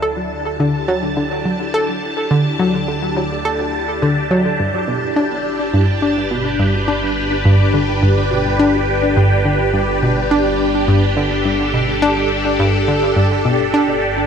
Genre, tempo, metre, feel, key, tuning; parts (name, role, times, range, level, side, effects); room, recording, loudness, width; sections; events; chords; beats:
ambient, sequencer-driven space music; 105 BPM; 4/4; straight; A4 = 439 Hz
phased string machine; sustained chords; 0.0-14.3 s; D3 to A5; -18 LUFS; equal; ensemble chorus, phaser
analog pluck; riff; 0.0-13.9 s; G2 to A4; -17 LUFS; equal; chorus, tape echo
analog drone; bass; 0.0-14.3 s; G1 to D2; -26 LUFS; equal; chorus
moderate huge ambient reverb, RT60 8.7 s; -14 LUFS; side -7 dB against mid
0.0-14.3 A section
filter sweep on synth arpeggio sound 0.0-14.3
0.0 Dsus2; 4.6 G
| 0.03 0.60 1.17 1.74 | 2.31 2.88 3.45 4.03 | 4.60 5.17 5.74 6.31 | 6.88 7.45 8.03 8.60 | 9.17 9.74 10.31 10.88 | 11.45 12.03 12.60 13.17 | 13.74